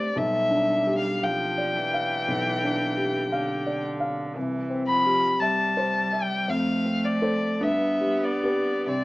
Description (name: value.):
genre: classical, slow romantic movement for piano trio.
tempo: 46-58 BPM.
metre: 4/4.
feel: rubato.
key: unclear.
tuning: A4 = 440 Hz.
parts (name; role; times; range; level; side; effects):
rich violin; melody; 0.0-9.0 s; D5 to B5; -25 LUFS; left 2 dB; none.
rich cello; second line; 0.0-9.0 s; D3 to C4; -31 LUFS; right 2 dB; none.
dark concert grand piano; accompaniment; 0.0-9.0 s; B1 to F5; -26 LUFS; equal; none.
room: light reverb.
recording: small speaker sound.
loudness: -22 LUFS.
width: side -20 dB against mid.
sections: 0.0-9.0 A section.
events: none.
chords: 0.2 G7/B; 4.4 C; 6.5 F; 7.6 G.